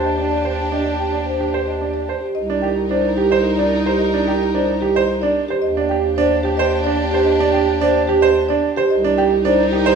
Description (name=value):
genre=classical, minimalist pattern music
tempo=110 BPM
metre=3/4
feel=straight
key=C minor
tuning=A4 = 440 Hz
part: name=marimba with soft mallets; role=melody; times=0.0-10.0 s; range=G4 to G5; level=-20 LUFS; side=left 2 dB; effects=none
part: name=clear clarinet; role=second line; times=0.0-10.0 s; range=D4 to Eb4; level=-27 LUFS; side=right 2 dB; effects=none
part: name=rich studio violin section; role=sustained chords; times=0.0-10.0 s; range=D4 to Bb4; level=-26 LUFS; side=left 1 dB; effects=none
part: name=clear concert grand piano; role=arpeggios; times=0.0-10.0 s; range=D4 to C5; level=-19 LUFS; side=right 9 dB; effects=none
part: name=mellow bass clarinet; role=bass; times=0.0-10.0 s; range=C2 to Eb2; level=-24 LUFS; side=left 1 dB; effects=none
room=moderate recital hall reverb, RT60 1.4 s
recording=studio reverb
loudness=-15 LUFS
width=side -6 dB against mid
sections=0.0-2.4 A section; 2.4-10.0 B section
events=none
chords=0.0 Ebmaj7; 2.4 Cm7; 5.6 Ebmaj7; 8.9 Cm7